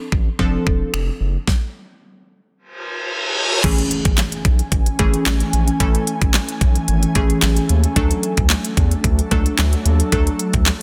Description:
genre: dance-pop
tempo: 111 BPM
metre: 4/4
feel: straight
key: A major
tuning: A4 = 440 Hz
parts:
  - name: glassy wavetable pluck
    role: accompaniment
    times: 0.0-10.8 s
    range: E3 to A4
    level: -25 LUFS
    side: equal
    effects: chorus, sidechain pumping
  - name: round analog bass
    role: bass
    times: 0.1-10.7 s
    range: E1 to E2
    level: -21 LUFS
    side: equal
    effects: sidechain pumping
  - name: pop drum kit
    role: drums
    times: 0.1-10.8 s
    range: crash cymbal, finger snaps, handclaps, hi-hat, kick drum, snare drum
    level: -21 LUFS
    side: equal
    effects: none
  - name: reverse cymbal and impact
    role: sound effects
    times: 2.8-5.8 s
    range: none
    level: -24 LUFS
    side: equal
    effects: none
  - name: ethereal airy pad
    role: sustained chords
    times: 4.4-10.8 s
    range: E3 to G#5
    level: -27 LUFS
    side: equal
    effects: ensemble chorus, built-in reverb, sidechain pumping
room: light reverb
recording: dense, heavily limited modern master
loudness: -18 LUFS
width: mono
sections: 0.0-3.6 A section; 3.6-10.8 B section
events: stop 1.5-3.6; reverse cymbal 2.8-3.6; impact 3.6-5.8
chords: 0.0 F6; 3.6 Amaj7; 8.0 D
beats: 0.40 0.94 | 1.48 2.02 2.56 3.10 | 3.64 4.18 4.72 5.26 | 5.80 6.34 6.88 7.42 | 7.96 8.50 9.04 9.59 | 10.13 10.67

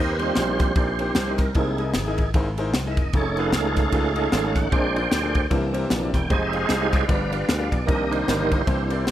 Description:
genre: uptempo gospel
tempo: 152 BPM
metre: 4/4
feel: swing 59% on 8ths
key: unclear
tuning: A4 = 445 Hz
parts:
  - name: clear grand piano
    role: accompaniment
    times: 0.0-9.1 s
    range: G2 to F5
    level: -29 LUFS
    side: left 2 dB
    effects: none
  - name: tonewheel organ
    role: sustained chords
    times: 0.0-9.1 s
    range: Eb3 to Ab5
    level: -24 LUFS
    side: right 3 dB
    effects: slow rotary speaker, overdrive, chorus vibrato
  - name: slap bass with an envelope filter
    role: bass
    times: 0.0-9.1 s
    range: E1 to Eb2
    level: -27 LUFS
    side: equal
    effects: none
  - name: crisp fusion drum kit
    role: drums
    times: 0.2-9.1 s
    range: kick drum, ride cymbal, snare drum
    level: -24 LUFS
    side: equal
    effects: none
room: light reverb, studio reverb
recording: rough home demo mix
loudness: -20 LUFS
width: side -12 dB against mid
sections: 0.0-9.1 A section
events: tonewheel organ solo 0.0-9.1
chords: 0.0 Eb6; 1.6 C7alt; 3.1 F7alt; 4.7 Bb9; 5.5 C7; 6.3 Fm9; 7.1 G7; 7.9 Cm9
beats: 0.36 0.76 1.16 | 1.55 1.95 2.34 2.74 | 3.14 3.53 3.93 4.32 | 4.72 5.11 5.51 5.91 | 6.30 6.70 7.09 7.49 | 7.88 8.28 8.67 9.07

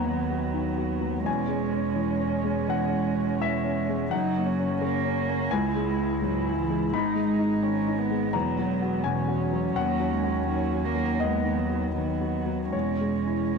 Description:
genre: neoclassical piano and strings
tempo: 84 BPM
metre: 4/4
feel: rubato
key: C# dorian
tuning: A4 = 442 Hz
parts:
  - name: warm cello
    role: second line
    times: 0.0-13.6 s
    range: E3 to A#3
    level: -29 LUFS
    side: right 10 dB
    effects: none
  - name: dark viola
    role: accompaniment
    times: 0.0-13.6 s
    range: B3 to E4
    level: -31 LUFS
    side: right 11 dB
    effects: none
  - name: warm grand piano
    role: accompaniment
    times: 0.0-13.6 s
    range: C#2 to B5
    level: -28 LUFS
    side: left 11 dB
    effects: none
  - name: rich double bass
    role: bass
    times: 0.0-13.6 s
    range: E1 to D#2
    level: -32 LUFS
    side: equal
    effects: none
room: moderate spring reverb, RT60 2.3 s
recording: 1960s-style stereo with parts hard left and right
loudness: -24 LUFS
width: side -5 dB against mid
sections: 0.0-13.6 A section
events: none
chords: 0.0 B/D#; 1.3 C#m/E; 4.1 F#; 5.5 C#m; 6.9 G#m; 8.3 Eadd9; 9.8 B/D#; 12.7 C#m/E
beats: 0.56 | 1.27 1.99 2.71 3.42 | 4.12 4.82 5.53 6.23 | 6.94 7.64 8.34 9.05 | 9.76 10.48 11.20 11.95 | 12.73 13.53

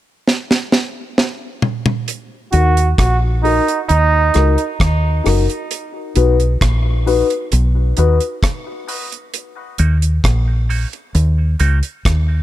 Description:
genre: dub reggae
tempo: 66 BPM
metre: 4/4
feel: straight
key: Eb minor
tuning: A4 = 438 Hz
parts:
  - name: deep reggae drum kit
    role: drums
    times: 0.3-12.3 s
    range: hi-hat, kick drum, rim click, snare drum, toms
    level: -18 LUFS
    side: right 1 dB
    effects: none
  - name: brilliant trombone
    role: second line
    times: 2.5-4.8 s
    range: Eb4 to Gb4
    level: -18 LUFS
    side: right 5 dB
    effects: tape echo
  - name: warm concert grand piano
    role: stabs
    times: 2.5-10.0 s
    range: Eb4 to B4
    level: -20 LUFS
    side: left 7 dB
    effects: high-pass filter, low-pass filter, tape echo
  - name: deep dub fingered electric bass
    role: bass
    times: 2.5-12.4 s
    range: Gb1 to Eb2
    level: -14 LUFS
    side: equal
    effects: none
  - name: electric guitar with an envelope filter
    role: accompaniment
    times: 9.8-11.8 s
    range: Bb3 to Gb4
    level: -25 LUFS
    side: right 7 dB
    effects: warbly pitch drift, high-pass filter, low-pass filter, tape echo
room: studio ambience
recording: none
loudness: -13 LUFS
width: side -14 dB against mid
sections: 0.0-2.1 A section; 2.1-12.4 B section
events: drum fill 0.3-2.1; filter sweep 2.1-12.4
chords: 0.0 N.C.; 2.1 Ebm; 5.7 B; 9.3 Ebm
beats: 0.26 1.17 | 2.08 2.98 3.89 4.80 | 5.70 6.61 7.52 8.42 | 9.33 10.24 11.14 12.05

